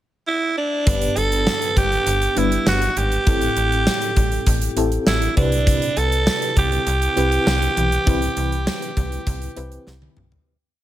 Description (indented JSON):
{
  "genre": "1980s-style pop",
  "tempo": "100 BPM",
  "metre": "4/4",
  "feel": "straight",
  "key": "unclear",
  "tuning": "A4 = 441 Hz",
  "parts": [
    { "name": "raspy alto saxophone", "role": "melody", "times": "0.3-9.8 s", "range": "D4 to A4", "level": "-21 LUFS", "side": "right 2 dB", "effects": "none" },
    { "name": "FM electric piano with tremolo", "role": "accompaniment", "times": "0.9-10.5 s", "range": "G2 to B4", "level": "-25 LUFS", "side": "left 1 dB", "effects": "phaser" },
    { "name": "slap-like FM bass", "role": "bass", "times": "0.9-10.4 s", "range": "G1 to C2", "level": "-23 LUFS", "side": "equal", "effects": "none" },
    { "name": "gated 80s drum kit", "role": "drums", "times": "0.9-10.5 s", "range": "hi-hat, kick drum, snare drum, toms", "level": "-21 LUFS", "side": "equal", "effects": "gated reverb" }
  ],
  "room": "light reverb, small room ambience",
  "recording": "none",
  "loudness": "-17 LUFS",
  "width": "side -13 dB against mid",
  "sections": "0.0-0.9 pickup bar; 0.9-10.5 verse",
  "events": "fade-out 8.1-10.5; drum fill 9.9-10.5",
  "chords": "0.0 N.C.; 0.9 G; 3.3 Am7; 5.4 Cmaj7",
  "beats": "0.27 | 0.87 1.47 2.07 2.67 | 3.27 3.87 4.47 5.07 | 5.67 6.27 6.87 7.47 | 8.07 8.67 9.27 9.87"
}